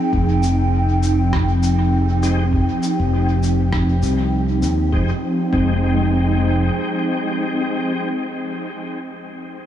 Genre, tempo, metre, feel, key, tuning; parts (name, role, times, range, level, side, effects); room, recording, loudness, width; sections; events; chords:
ambient dub; 100 BPM; 4/4; swing 57% on 16ths; F minor; A4 = 440 Hz
airy breathy pad; sustained chords; 0.0-8.1 s; F3 to G5; -20 LUFS; right 1 dB; chorus
modern bright fingered electric bass; bass; 0.1-6.7 s; F1 to Eb2; -18 LUFS; equal
electronic kick drum; drums; 0.1-5.7 s; -22 LUFS; equal; overdrive
electronic shaker and rim click; drums; 0.4-4.8 s; -33 LUFS; left 1 dB; overdrive, dub echo
tonewheel organ; stabs; 2.2-8.1 s; Ab3 to G4; -25 LUFS; left 2 dB; chorus vibrato, fast rotary speaker, vintage 12-bit sampler grit, low-pass filter, dub echo
moderate huge ambient reverb, RT60 7.8 s; dreamy mix soaked in reverb; -16 LUFS; side -10 dB against mid
0.0-4.9 A section; 4.9-7.3 B section
0.0 Fm9